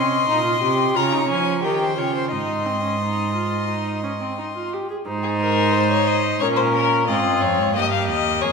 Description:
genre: classical, baroque-style fugue for string quartet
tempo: 89 BPM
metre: 4/4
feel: straight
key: Ab major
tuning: A4 = 440 Hz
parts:
  - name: warm violin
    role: melody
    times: 0.0-8.5 s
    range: Ab4 to C6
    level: -23 LUFS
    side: left 7 dB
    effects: none
  - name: rich violin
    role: second line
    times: 0.0-8.5 s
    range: F4 to Eb5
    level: -25 LUFS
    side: left 2 dB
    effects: none
  - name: warm viola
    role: accompaniment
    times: 0.0-8.5 s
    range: Bb3 to Ab4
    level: -24 LUFS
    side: right 2 dB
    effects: none
  - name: rich cello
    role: bass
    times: 0.0-8.5 s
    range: Eb2 to F3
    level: -25 LUFS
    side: right 4 dB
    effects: none
room: wet recital hall reverb, RT60 1.6 s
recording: recorded in a church or concert hall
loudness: -18 LUFS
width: side -4 dB against mid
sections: 0.0-5.1 A section; 5.1-8.5 B section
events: none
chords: 0.0 Cm; 1.0 Db; 1.6 Eb7; 2.3 Ab; 6.4 Bbm; 7.8 Eb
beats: 0.28 0.95 1.63 | 2.31 3.00 3.69 4.38 | 5.07 5.74 6.41 7.08 | 7.75 8.42

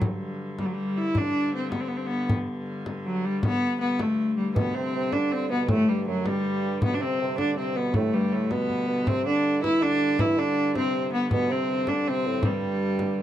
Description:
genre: medieval dance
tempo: 106 BPM (dotted quarters)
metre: 6/8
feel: straight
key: G major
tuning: A4 = 438 Hz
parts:
  - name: clear hurdy-gurdy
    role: drone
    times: 0.0-13.2 s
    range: G2 to D3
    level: -35 LUFS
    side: left 1 dB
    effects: none
  - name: frame drum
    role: percussion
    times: 0.0-13.2 s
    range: none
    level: -28 LUFS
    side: left 1 dB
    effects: none
  - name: clear viola da gamba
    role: melody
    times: 0.6-13.2 s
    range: F#3 to E4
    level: -25 LUFS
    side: left 1 dB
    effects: none
  - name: warm bassoon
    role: second line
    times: 4.5-13.2 s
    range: F#2 to E3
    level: -30 LUFS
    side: right 6 dB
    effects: none
room: light reverb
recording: dry, close 1970s-style studio recording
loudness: -23 LUFS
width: side -11 dB against mid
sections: 0.0-4.6 A section; 4.6-13.2 B section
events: none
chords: none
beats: | 0.01 0.58 | 1.15 1.72 | 2.29 2.85 | 3.42 3.99 | 4.55 5.12 | 5.69 6.25 | 6.82 7.38 | 7.95 8.51 | 9.07 9.63 | 10.20 10.76 | 11.32 11.88 | 12.44 13.00

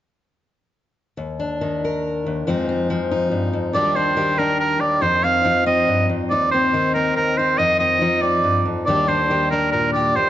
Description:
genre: folk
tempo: 140 BPM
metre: 3/4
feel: straight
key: Eb major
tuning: A4 = 439 Hz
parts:
  - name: fingerpicked steel-string acoustic guitar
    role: accompaniment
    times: 1.2-10.3 s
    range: Eb2 to Bb4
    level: -21 LUFS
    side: left 2 dB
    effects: none
  - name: bright oboe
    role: melody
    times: 3.7-10.3 s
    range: Bb4 to F5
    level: -18 LUFS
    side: right 2 dB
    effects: none
room: moderate recital hall reverb, RT60 1.6 s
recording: nothing above 7.7 kHz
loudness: -17 LUFS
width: side -12 dB against mid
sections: 1.2-3.8 A section; 3.8-10.3 B section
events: none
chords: 1.2 Eb5; 2.5 Fm7; 3.8 Ebmaj7; 5.0 F5; 6.3 Cm/Eb; 7.6 F5; 8.9 Ebmaj7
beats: | 1.18 1.61 2.04 | 2.47 2.90 3.32 | 3.75 4.18 4.61 | 5.03 5.46 5.89 | 6.32 6.75 7.17 | 7.60 8.03 8.46 | 8.88 9.31 9.74 | 10.16

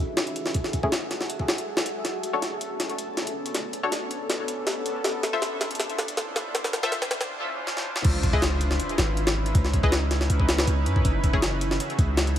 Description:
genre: drum and bass, jungle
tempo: 160 BPM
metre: 4/4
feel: straight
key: C# phrygian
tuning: A4 = 440 Hz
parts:
  - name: jungle sampler-style drum kit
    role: drums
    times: 0.2-12.4 s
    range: crash cymbal, hi-hat, kick drum, snare drum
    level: -26 LUFS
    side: equal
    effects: studio reverb
  - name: filtered dub chord stab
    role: stabs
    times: 0.8-11.4 s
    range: A3 to E5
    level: -31 LUFS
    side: left 3 dB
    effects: chorus, dub echo
  - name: swell and sub drop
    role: sound effects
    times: 7.4-9.5 s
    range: none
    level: -35 LUFS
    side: equal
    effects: none
  - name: long sustained 808-style bass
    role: bass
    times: 8.0-12.4 s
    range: F#1 to F#2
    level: -25 LUFS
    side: equal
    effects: none
room: light reverb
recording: vinyl crackle, high-pass filter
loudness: -23 LUFS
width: side -11 dB against mid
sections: 0.0-8.0 A section; 8.0-12.4 B section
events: build-up 0.0-8.0; filter sweep on synth stab 0.0-8.0; filter sweep 0.0-8.0; drum fill 2.0-7.3, 7.7-8.0; break 7.3-8.0; swell 7.4-8.0; drop 8.0-12.4; impact 8.0-9.5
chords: 0.0 F#m9; 2.0 Bm9; 5.0 Dm9; 8.0 C#m9; 11.0 F#m9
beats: 0.17 | 0.55 0.92 1.30 1.67 | 2.05 2.42 2.80 3.17 | 3.55 3.92 4.30 4.67 | 5.05 5.42 5.80 6.17 | 6.55 6.92 7.30 7.67 | 8.05 8.42 8.80 9.17 | 9.55 9.92 10.30 10.67 | 11.05 11.42 11.80 12.17

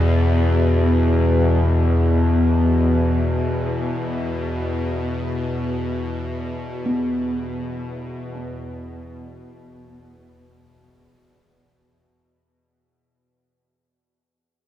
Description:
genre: dark ambient drone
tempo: free time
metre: none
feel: none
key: unclear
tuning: A4 = 442 Hz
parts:
  - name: gamelan-type bossed gongs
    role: arpeggios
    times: 0.0-12.9 s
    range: E2 to B3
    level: -30 LUFS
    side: equal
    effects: diffuse ambient delay
  - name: bowed-like drone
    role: drone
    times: 0.0-12.7 s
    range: E2 to B2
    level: -19 LUFS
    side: left 1 dB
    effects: built-in reverb
room: moderate huge ambient reverb, RT60 9.0 s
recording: cassette tape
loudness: -18 LUFS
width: side -12 dB against mid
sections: 0.0-12.6 A section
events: fade-out 2.0-12.6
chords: 0.0 E5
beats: free time

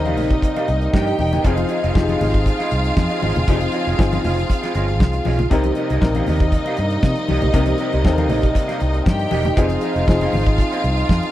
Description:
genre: disco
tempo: 118 BPM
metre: 4/4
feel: straight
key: C minor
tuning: A4 = 439 Hz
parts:
  - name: clear studio string section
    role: second line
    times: 0.0-11.3 s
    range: Eb4 to G5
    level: -26 LUFS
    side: equal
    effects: none
  - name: clear grand piano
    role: accompaniment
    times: 0.0-11.3 s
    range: C3 to Bb4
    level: -25 LUFS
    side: left 5 dB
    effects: none
  - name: clear French horn section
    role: sustained chords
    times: 0.0-11.3 s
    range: C3 to Ab4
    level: -24 LUFS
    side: right 1 dB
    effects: none
  - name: vintage muted fingered electric bass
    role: bass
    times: 0.0-11.2 s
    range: E1 to C3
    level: -21 LUFS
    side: equal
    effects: none
  - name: electric guitar at the edge of break-up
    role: accompaniment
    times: 0.1-11.3 s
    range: F4 to F5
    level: -27 LUFS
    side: right 5 dB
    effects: none
  - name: damped 70s drum kit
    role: drums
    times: 0.1-11.3 s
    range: hi-hat, kick drum, snare drum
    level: -17 LUFS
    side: equal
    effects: none
  - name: congas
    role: percussion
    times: 0.1-11.3 s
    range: none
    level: -28 LUFS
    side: left 4 dB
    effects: none
room: little or no reverb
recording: dry, close 1970s-style studio recording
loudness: -16 LUFS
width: side -14 dB against mid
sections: 0.0-11.3 A section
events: none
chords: 0.0 Cm7; 1.4 Fm7; 5.5 Cm7; 9.6 Fm7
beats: 0.43 0.93 | 1.44 1.95 2.46 2.97 | 3.48 3.98 4.49 5.00 | 5.51 6.02 6.52 7.03 | 7.54 8.05 8.55 9.06 | 9.57 10.08 10.59 11.09

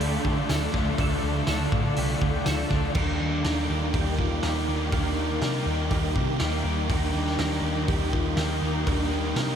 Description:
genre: rock, shoegaze and dream pop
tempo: 122 BPM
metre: 4/4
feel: straight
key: unclear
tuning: A4 = 439 Hz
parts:
  - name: ethereal airy pad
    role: sustained chords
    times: 0.0-9.6 s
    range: A4 to Eb6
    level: -35 LUFS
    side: equal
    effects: ensemble chorus, built-in reverb
  - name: twelve-string electric guitar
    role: arpeggios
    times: 0.0-9.6 s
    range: G4 to Bb4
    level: -37 LUFS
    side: right 7 dB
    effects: ensemble chorus, diffuse ambient delay
  - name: biting overdriven guitar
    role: riff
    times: 0.0-3.0 s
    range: D3 to D4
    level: -38 LUFS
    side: equal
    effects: none
  - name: crunchy overdriven guitar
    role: riff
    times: 0.0-9.6 s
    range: D3 to G4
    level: -30 LUFS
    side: left 6 dB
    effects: lush chorus
  - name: overdriven electric guitar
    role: riff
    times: 0.0-9.6 s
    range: D3 to G4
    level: -32 LUFS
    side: right 8 dB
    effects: reverse reverb
  - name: vintage muted picked electric bass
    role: bass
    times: 0.0-9.6 s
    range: C2 to D3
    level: -28 LUFS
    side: equal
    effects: none
  - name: loose indie drum kit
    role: drums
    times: 0.0-9.5 s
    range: crash cymbal, hi-hat, kick drum, snare drum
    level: -29 LUFS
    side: equal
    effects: none
  - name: tambourine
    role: percussion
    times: 0.5-2.6 s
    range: none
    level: -47 LUFS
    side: left 4 dB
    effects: none
  - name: mellow horn-like synth lead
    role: melody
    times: 3.0-9.6 s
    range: D4 to G4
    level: -34 LUFS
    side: right 2 dB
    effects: chorus, diffuse ambient delay
room: moderate huge ambient reverb, RT60 8.0 s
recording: dreamy mix soaked in reverb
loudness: -23 LUFS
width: side -8 dB against mid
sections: 0.0-3.0 A section; 3.0-9.6 B section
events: none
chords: 0.0 Dm; 3.0 Ebmaj7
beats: 0.01 0.50 | 0.99 1.48 1.97 2.46 | 2.96 3.45 3.94 4.43 | 4.93 5.42 5.91 6.41 | 6.90 7.39 7.89 8.38 | 8.88 9.37

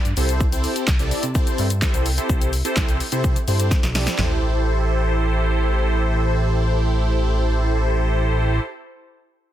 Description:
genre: dance-pop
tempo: 127 BPM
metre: 4/4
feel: straight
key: A minor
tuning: A4 = 439 Hz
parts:
  - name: big bright polysynth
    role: accompaniment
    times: 0.0-8.6 s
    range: C4 to D5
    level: -24 LUFS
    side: right 1 dB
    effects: chorus, sidechain pumping
  - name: chorused synth bass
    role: bass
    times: 0.1-8.6 s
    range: A1 to C3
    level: -21 LUFS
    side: equal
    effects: sidechain pumping
  - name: house drum kit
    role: drums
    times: 0.1-4.3 s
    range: handclaps, hi-hat, kick drum, shaker, snare drum, toms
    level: -21 LUFS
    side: equal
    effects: none
room: digital ambience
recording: dense, heavily limited modern master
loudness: -18 LUFS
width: side -12 dB against mid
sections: 0.0-4.2 A section; 4.2-8.0 B section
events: drum fill 3.7-4.2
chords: 0.2 C6; 4.2 Am7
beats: | 0.41 0.88 1.35 1.82 | 2.29 2.77 3.24 3.71 | 4.18 4.66 5.13 5.60 | 6.08 6.55 7.02 7.49

